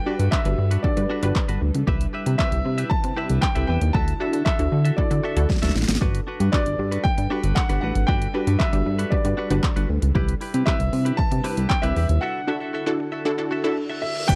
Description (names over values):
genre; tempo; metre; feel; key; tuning
dance-pop; 116 BPM; 4/4; straight; G major; A4 = 440 Hz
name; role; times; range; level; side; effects
warm concert grand piano; melody; 0.0-14.4 s; D5 to A5; -31 LUFS; equal; slapback echo
airy breathy pad; sustained chords; 0.0-14.4 s; C3 to B4; -36 LUFS; equal; chorus, sidechain pumping
unison pluck; accompaniment; 0.1-14.3 s; C4 to D5; -30 LUFS; equal; sidechain pumping
direct-recorded clean electric guitar; riff; 0.1-14.4 s; D4 to E5; -34 LUFS; equal; subtle chorus
chorused synth bass; bass; 0.2-14.4 s; G1 to D3; -24 LUFS; equal; sidechain pumping
deep house drum kit; drums; 0.2-14.4 s; crash cymbal, handclaps, hi-hat, kick drum, shaker, snare drum; -26 LUFS; equal; overdrive
reverse cymbal and impact; sound effects; 13.7-14.4 s; none; -35 LUFS; equal; none
room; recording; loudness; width
little or no reverb; dry, close 1970s-style studio recording; -22 LUFS; mono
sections
0.0-14.3 A section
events
drum fill 5.5-6.0; break 12.2-14.3; reverse cymbal 13.7-14.3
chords
0.0 Gmaj7; 1.9 Cmaj7; 3.9 Dadd9; 6.0 Gmaj7; 10.2 Cmaj7; 12.2 Dadd9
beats
0.33 0.84 1.36 | 1.88 2.39 2.91 3.43 | 3.94 4.46 4.98 5.50 | 6.01 6.53 7.05 7.57 | 8.08 8.60 9.12 9.63 | 10.15 10.67 11.19 11.70 | 12.22 12.74 13.26 13.77 | 14.29